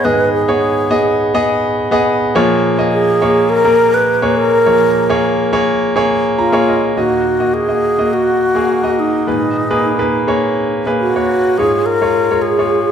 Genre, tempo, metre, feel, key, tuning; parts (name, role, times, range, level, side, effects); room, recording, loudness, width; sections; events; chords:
pop; 104 BPM; 4/4; straight; A4 = 439 Hz
breathy bright wooden-headed alto flute; melody; 0.0-12.9 s; D#4 to B4; -14 LUFS; equal
clear grand piano; accompaniment; 0.0-12.9 s; D#2 to A#5; -14 LUFS; equal
wet large studio reverb, RT60 1.2 s; -12 LUFS; side -8 dB against mid
0.0-7.0 A section; 7.0-12.9 B section
grand piano fill 6.1-7.0
0.0 G#m; 2.3 A#m7; 7.0 D#m; 9.3 G#madd9; 11.6 C#/G#